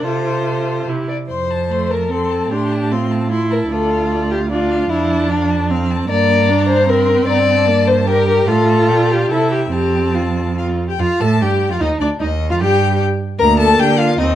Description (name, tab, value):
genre	quick classical-period movement for string quartet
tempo	150 BPM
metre	3/4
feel	rubato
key	F major, Bb major from 11.0 s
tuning	A4 = 440 Hz
part	rich violin	melody	0.0-14.3 s	C5 to C6	-24 LUFS	left 8 dB	none
part	dark violin	second line	0.0-14.3 s	D4 to D5	-18 LUFS	left 3 dB	none
part	rich viola	accompaniment	0.0-14.3 s	A3 to A4	-20 LUFS	right 2 dB	none
part	clear cello	bass	0.0-14.3 s	D2 to D3	-18 LUFS	right 4 dB	none
room	light reverb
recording	dark, warm production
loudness	-14 LUFS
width	side -12 dB against mid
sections	0.0-1.3 A section; 1.3-11.0 B section; 11.0-14.3 A section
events	none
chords	0.0 F/C; 0.9 C; 1.3 F; 2.5 F/A; 3.7 Dm; 4.9 Dm/F; 6.1 Gm; 7.3 C5/G; 8.5 F/A; 8.9 Gm9/Bb; 9.3 C; 9.7 F; 11.0 F13; 12.2 Ebadd9; 13.4 Bb/D